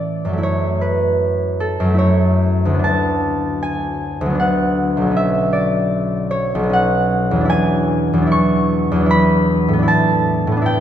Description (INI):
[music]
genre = classical, solo harp piece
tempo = 76 BPM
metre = 3/4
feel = uneven beats, rubato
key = unclear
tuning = A4 = 437 Hz
[part]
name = concert harp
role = solo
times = 0.0-10.8 s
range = B1 to C#6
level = -14 LUFS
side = equal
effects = none
[sound]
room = wet church reverb, RT60 2.8 s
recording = none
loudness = -14 LUFS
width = side -10 dB against mid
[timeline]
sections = 0.0-10.8 A section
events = none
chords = 0.4 F#m7; 2.8 D6; 5.1 Bm9; 7.5 E13; 9.9 A9sus4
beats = | 0.42 1.21 1.99 | 2.83 3.62 4.38 | 5.14 5.90 6.72 | 7.50 8.32 9.10 | 9.88 10.66